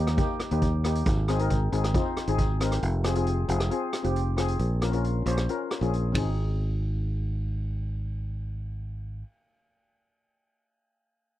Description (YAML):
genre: calypso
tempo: 135 BPM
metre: 4/4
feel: straight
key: Ab major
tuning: A4 = 441 Hz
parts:
  - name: steel pan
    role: accompaniment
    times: 0.0-9.2 s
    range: Bb3 to C5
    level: -30 LUFS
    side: left 4 dB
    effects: none
  - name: fingered electric bass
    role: bass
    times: 0.0-9.2 s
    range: F1 to Eb2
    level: -26 LUFS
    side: equal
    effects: none
  - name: street-band drum kit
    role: drums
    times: 0.1-6.3 s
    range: hi-hat, kick drum, ride cymbal, rim click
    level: -30 LUFS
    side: equal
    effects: none
room: little or no reverb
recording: dry, close 1970s-style studio recording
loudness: -25 LUFS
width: side -14 dB against mid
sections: 0.0-6.4 A section; 6.4-9.9 B section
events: none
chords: 0.0 Eb; 1.1 Ab; 2.8 Fm; 4.6 Bbm7; 6.1 Ab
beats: 0.18 0.62 | 1.06 1.50 1.94 2.38 | 2.83 3.27 3.71 4.15 | 4.59 5.04 5.48 5.92 | 6.37 6.81 7.25 7.70 | 8.14 8.59 9.03